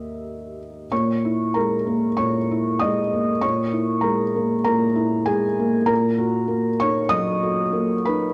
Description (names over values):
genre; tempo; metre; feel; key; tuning
neoclassical minimalist piano; 96 BPM; 4/4; rubato; unclear; A4 = 436 Hz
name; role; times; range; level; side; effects
felt-muted upright piano; solo; 0.0-8.3 s; D#2 to D#6; -22 LUFS; equal; none
room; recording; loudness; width
moderate recital hall reverb, RT60 1.5 s; dark, warm production; -21 LUFS; mono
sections
0.9-8.3 A section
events
none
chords
0.0 D#; 0.9 A#m7b5; 5.9 D#m7/A#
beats
0.25 | 0.91 1.55 2.18 2.81 | 3.43 4.05 4.67 5.29 | 5.90 6.51 7.14 7.76